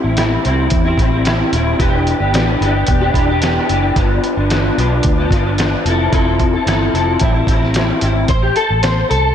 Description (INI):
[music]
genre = indie pop, bedroom pop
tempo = 111 BPM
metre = 4/4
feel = straight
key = A minor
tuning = A4 = 440 Hz
[part]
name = electric guitar through a small old amp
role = accompaniment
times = 0.0-9.3 s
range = G2 to C5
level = -16 LUFS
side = left 2 dB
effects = ensemble chorus, warbly pitch drift
[part]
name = vintage muted fingered electric bass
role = bass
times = 0.0-9.3 s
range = D#1 to E2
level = -18 LUFS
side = right 1 dB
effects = none
[part]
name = lo-fi sampler-style drum kit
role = drums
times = 0.2-9.2 s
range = hi-hat, kick drum, snare drum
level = -18 LUFS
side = right 1 dB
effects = none
[sound]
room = moderate lush hall reverb, RT60 2.1 s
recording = dreamy mix soaked in reverb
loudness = -12 LUFS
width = side -9 dB against mid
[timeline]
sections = 0.0-8.3 A section; 8.3-9.3 B section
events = clean electric guitar solo 8.3-9.3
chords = 0.0 Am7; 1.8 Em7; 4.0 G7; 5.9 Fmaj7; 7.2 Am7; 8.3 Am